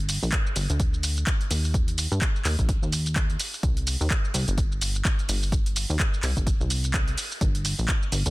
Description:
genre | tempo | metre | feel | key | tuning
piano house | 127 BPM | 4/4 | swing 58% on 16ths | C minor | A4 = 440 Hz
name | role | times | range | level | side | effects
plucky analog bass | bass | 0.0-8.3 s | G1 to G2 | -26 LUFS | equal | sidechain pumping
punchy analog drum machine | drums | 0.1-8.3 s | handclaps, hi-hat, shaker | -29 LUFS | right 1 dB | none
electronic kick drum | drums | 0.3-8.0 s | none | -25 LUFS | equal | none
room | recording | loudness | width
digital ambience | dense, heavily limited modern master | -22 LUFS | side -20 dB against mid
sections
0.0-8.3 A section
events
none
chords
none

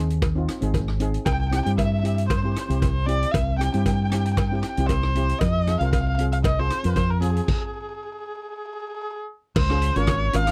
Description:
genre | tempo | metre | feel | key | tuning
calypso | 116 BPM | 4/4 | swing 53% on 16ths | unclear | A4 = 445 Hz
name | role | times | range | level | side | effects
steel pan | accompaniment | 0.0-10.5 s | C4 to Bb4 | -33 LUFS | equal | none
fingered electric bass | bass | 0.0-10.5 s | Ab1 to G2 | -25 LUFS | equal | none
street-band drum kit | drums | 0.1-10.5 s | crash cymbal, hi-hat, kick drum, rim click | -29 LUFS | equal | none
cowbell | percussion | 0.2-10.5 s | none | -35 LUFS | equal | none
dark erhu | melody | 1.3-10.5 s | Ab4 to G5 | -30 LUFS | equal | none
room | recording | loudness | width
little or no reverb | dry, close 1970s-style studio recording | -23 LUFS | mono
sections
0.0-9.6 A section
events
stop 7.5-9.6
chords
0.0 Ab; 1.3 C; 5.4 Fm; 9.6 Db

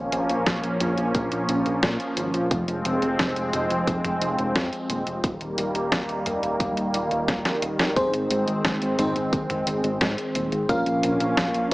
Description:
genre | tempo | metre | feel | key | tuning
synthwave | 88 BPM | 4/4 | straight | Bb dorian | A4 = 440 Hz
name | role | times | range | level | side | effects
lush unison pad | sustained chords | 0.0-11.7 s | Eb3 to Db4 | -25 LUFS | equal | chorus, phaser, vintage 12-bit sampler grit, sidechain pumping
chorused synth bass | bass | 0.0-11.7 s | Eb1 to Bb2 | -29 LUFS | equal | none
clean 12-bit digital drum machine | drums | 0.1-11.7 s | hi-hat, snare drum, toms | -27 LUFS | equal | studio reverb
electronic kick drum | drums | 0.5-11.5 s | none | -28 LUFS | equal | studio reverb
FM electric piano with soft pad layer | stabs | 8.0-11.7 s | C4 to F5 | -24 LUFS | equal | chorus, vintage 12-bit sampler grit, tape echo
room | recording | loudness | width
moderate plate reverb, RT60 1.8 s | small speaker sound | -22 LUFS | side -20 dB against mid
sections
0.0-11.7 A section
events
drum fill 7.3-8.0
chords
0.0 Bbm; 2.5 Fm; 5.2 Eb; 8.0 Ab; 10.7 Bbm

